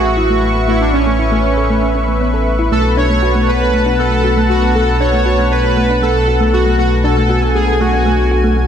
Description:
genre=synthwave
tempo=118 BPM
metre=4/4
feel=straight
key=unclear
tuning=A4 = 440 Hz
part: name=soft supersaw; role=melody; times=0.0-8.5 s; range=C#4 to C#5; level=-17 LUFS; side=right 1 dB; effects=shimmer reverb, tape echo
part: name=soft synth bell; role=second line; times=0.0-8.5 s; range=C#4 to C#5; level=-24 LUFS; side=left 1 dB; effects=none
part: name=lush unison pad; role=sustained chords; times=0.0-8.7 s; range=B4 to C#6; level=-20 LUFS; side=left 2 dB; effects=chorus, shimmer reverb
part: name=mellow synth brass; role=stabs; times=0.0-8.7 s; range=A2 to B4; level=-22 LUFS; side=left 3 dB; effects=chorus, shimmer reverb
part: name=dark detuned saw bass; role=bass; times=0.0-8.7 s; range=A1 to B1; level=-16 LUFS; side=equal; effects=none
part: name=thumb-piano-like synth pluck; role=arpeggios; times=0.2-8.6 s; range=A3 to A4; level=-19 LUFS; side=right 1 dB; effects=chorus, vintage 12-bit sampler grit, shimmer reverb, tape echo
room=moderate lush hall reverb, RT60 2.0 s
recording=big arena sound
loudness=-11 LUFS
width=side -8 dB against mid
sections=0.0-8.7 A section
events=filter sweep on synth arpeggio sound 0.0-8.7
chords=0.0 Aadd9; 2.7 Bm7

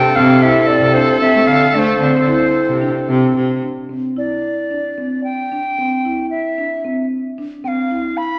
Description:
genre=contemporary instrumental, chamber music in an uneven meter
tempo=226 BPM (eighths)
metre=7/8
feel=straight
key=C major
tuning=A4 = 437 Hz
part: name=bright wooden flute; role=melody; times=0.0-8.4 s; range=C5 to B5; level=-20 LUFS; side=equal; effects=none
part: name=dark viola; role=second line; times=0.0-3.3 s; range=A4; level=-21 LUFS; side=equal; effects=none
part: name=mellow woodwind section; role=sustained chords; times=0.0-3.6 s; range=F3 to C4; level=-26 LUFS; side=equal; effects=none
part: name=marimba with soft mallets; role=arpeggios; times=0.0-8.2 s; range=C4 to E4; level=-21 LUFS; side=equal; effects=none
part: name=rich cello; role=bass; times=0.2-3.6 s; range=C3 to A3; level=-21 LUFS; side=equal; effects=none
room=wet recital hall reverb, RT60 1.7 s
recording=none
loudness=-16 LUFS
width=mono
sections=0.0-3.6 A section; 3.6-8.4 B section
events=none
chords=0.0 F/C; 3.6 Cadd9

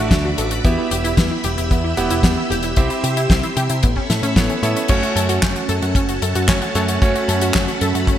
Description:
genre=italo disco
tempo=113 BPM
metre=4/4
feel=straight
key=unclear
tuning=A4 = 440 Hz
part: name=string machine, full ensemble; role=sustained chords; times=0.0-8.2 s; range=C#4 to E6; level=-25 LUFS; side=right 1 dB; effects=ensemble chorus
part: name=analog pluck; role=arpeggios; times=0.0-8.2 s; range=B3 to A4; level=-24 LUFS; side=left 2 dB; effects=chorus, ping-pong delay
part: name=clear electric grand piano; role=stabs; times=0.0-8.2 s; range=A3 to F#5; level=-23 LUFS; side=right 3 dB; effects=ping-pong delay
part: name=picked electric bass with an envelope filter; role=bass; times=0.0-8.2 s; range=E1 to C3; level=-22 LUFS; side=equal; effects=none
part: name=damped 70s drum kit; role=drums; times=0.1-8.2 s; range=crash cymbal, handclaps, hi-hat, snare drum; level=-22 LUFS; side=left 1 dB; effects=gated reverb
part: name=kick drum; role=drums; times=0.1-8.2 s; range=none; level=-18 LUFS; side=equal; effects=none
room=light reverb, studio reverb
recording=bright 1980s-style digital production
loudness=-15 LUFS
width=side -11 dB against mid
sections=0.0-4.9 A section; 4.9-8.2 B section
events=none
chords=0.0 D; 0.6 Em; 2.8 C; 3.8 Aadd9; 4.9 F#m

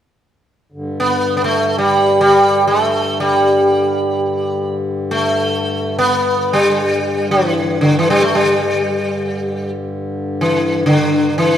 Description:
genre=indian classical, Hindustani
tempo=free time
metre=none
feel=none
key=G raga bhupali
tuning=A4 = 440 Hz
part: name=pedal harmonium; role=drone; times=0.7-11.6 s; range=G2 to D3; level=-22 LUFS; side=left 1 dB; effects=none
part: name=sitar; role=melody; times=1.0-11.6 s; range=D3 to B3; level=-14 LUFS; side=equal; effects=none
room=moderate scoring stage reverb, RT60 1.6 s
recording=recorded in a church or concert hall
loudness=-13 LUFS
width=side -10 dB against mid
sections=0.7-11.6 A section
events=none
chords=none

